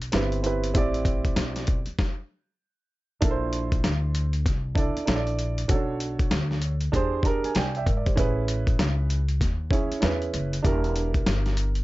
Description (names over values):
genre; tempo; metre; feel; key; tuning
hip hop, jazz-hop; 97 BPM; 4/4; swing 62% on 16ths; A minor; A4 = 440 Hz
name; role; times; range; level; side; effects
upright bass; bass; 0.0-11.8 s; E1 to G#2; -27 LUFS; equal; none
dusty soul sampler-style drum kit; drums; 0.0-11.8 s; hi-hat, kick drum, snare drum; -25 LUFS; equal; overdrive
dark concert grand piano; accompaniment; 0.1-11.7 s; C4 to Bb5; -28 LUFS; right 4 dB; none
room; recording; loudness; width
light reverb; nothing above 7.7 kHz; -23 LUFS; side -18 dB against mid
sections
0.0-3.2 A section; 3.2-11.8 B section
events
stop 2.0-3.2; grand piano fill 6.9-8.2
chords
0.0 Am9; 3.2 Bbmaj9#11; 5.7 Bm7; 6.9 E7alt; 8.2 Amaj9; 10.6 Em7b5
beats
0.13 | 0.75 1.37 1.99 2.61 | 3.23 3.84 4.46 5.08 | 5.70 6.32 6.94 7.55 | 8.17 8.79 9.41 10.03 | 10.65 11.27